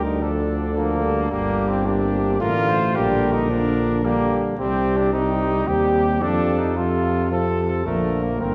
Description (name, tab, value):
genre	classical, brass quintet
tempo	110 BPM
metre	3/4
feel	straight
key	Bb major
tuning	A4 = 440 Hz
part	warm cornet	melody	0.0-8.5 s	G4 to C5	-30 LUFS	equal	none
part	mellow trumpet	second line	0.0-8.5 s	A3 to A4	-26 LUFS	equal	none
part	bright trombone	accompaniment	0.0-8.5 s	C3 to D3	-29 LUFS	equal	none
part	clear French horn	accompaniment	0.0-8.5 s	F3 to Bb3	-30 LUFS	equal	none
part	mellow bass trombone	bass	0.0-8.5 s	G1 to F2	-26 LUFS	equal	none
room	wet concert hall reverb, RT60 1.8 s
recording	recorded in a church or concert hall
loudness	-21 LUFS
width	mono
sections	0.0-8.5 A section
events	none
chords	0.0 Bb/D; 1.3 Gm; 3.0 Gm/Bb; 4.6 Cm; 6.2 F; 7.9 Bb